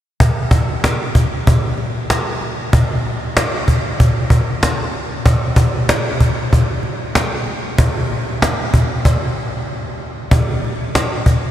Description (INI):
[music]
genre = hip hop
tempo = 95 BPM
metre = 4/4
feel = swing 66% on 16ths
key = none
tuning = none
[part]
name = cajon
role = drums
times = 0.2-11.5 s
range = none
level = -14 LUFS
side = equal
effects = none
[sound]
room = wet huge ambient reverb, RT60 7.8 s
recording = dreamy mix soaked in reverb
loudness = -14 LUFS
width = side -12 dB against mid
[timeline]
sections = 0.2-10.3 A section; 10.3-11.5 B section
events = stop 9.0-10.3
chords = none